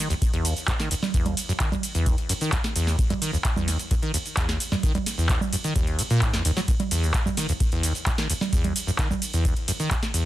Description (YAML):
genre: acid house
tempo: 130 BPM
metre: 4/4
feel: straight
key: Eb phrygian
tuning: A4 = 440 Hz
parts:
  - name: acid bass, saw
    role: riff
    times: 0.0-10.3 s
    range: Eb2 to Gb3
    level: -26 LUFS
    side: equal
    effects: analog chorus, cassette tape, ping-pong delay
  - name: booming analog drum machine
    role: drums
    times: 0.0-10.2 s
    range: cabasa, congas, handclaps, hi-hat, ride cymbal, snare drum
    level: -27 LUFS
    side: right 3 dB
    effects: none
  - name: electronic kick drum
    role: drums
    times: 0.2-10.0 s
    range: none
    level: -25 LUFS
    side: equal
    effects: none
room: light reverb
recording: dense, heavily limited modern master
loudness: -22 LUFS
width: side -14 dB against mid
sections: 0.0-10.3 A section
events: none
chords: none